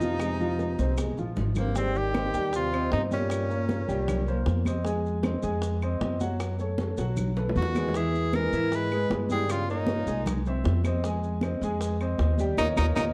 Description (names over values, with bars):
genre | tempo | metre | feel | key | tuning
Afro-Cuban jazz | 155 BPM | 4/4 | straight | Ab major | A4 = 439 Hz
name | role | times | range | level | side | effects
clear tenor saxophone | melody | 0.0-4.6, 7.6-13.1 s | Bb3 to B4 | -33 LUFS | equal | none
trombone with bucket mute | second line | 0.0-4.6, 7.6-13.1 s | G2 to G#3 | -38 LUFS | equal | tape echo
warm upright piano | accompaniment | 0.0-13.1 s | E3 to Ab5 | -34 LUFS | equal | none
upright bass | bass | 0.0-13.1 s | Ab1 to G#2 | -32 LUFS | equal | none
bongos | percussion | 0.0-13.1 s | none | -41 LUFS | equal | none
congas | percussion | 0.0-13.1 s | none | -36 LUFS | equal | none
maracas | percussion | 0.0-13.1 s | none | -52 LUFS | equal | none
claves | percussion | 0.2-13.1 s | none | -48 LUFS | equal | none
room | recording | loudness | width
wet large studio reverb, RT60 1.3 s | dark, warm production | -27 LUFS | mono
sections
0.0-1.8 A section; 1.8-13.1 B section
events
drum fill 1.0-1.8, 7.0-7.9, 13.0; band accent 12.6-13.1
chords
0.0 Fm7; 1.8 Abmaj7; 3.3 Gdim; 4.1 C5; 4.9 Fm7; 6.4 Gbm; 7.2 B7; 7.9 E; 9.5 Gdim; 10.3 Caug; 11.0 Fm9; 12.6 Eb5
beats
| 0.20 0.59 0.98 1.37 | 1.75 2.14 2.53 2.92 | 3.30 3.69 4.08 4.46 | 4.85 5.24 5.62 6.01 | 6.40 6.79 7.17 7.56 | 7.95 8.33 8.72 9.11 | 9.49 9.88 10.27 10.65 | 11.04 11.43 11.81 12.20 | 12.59 12.97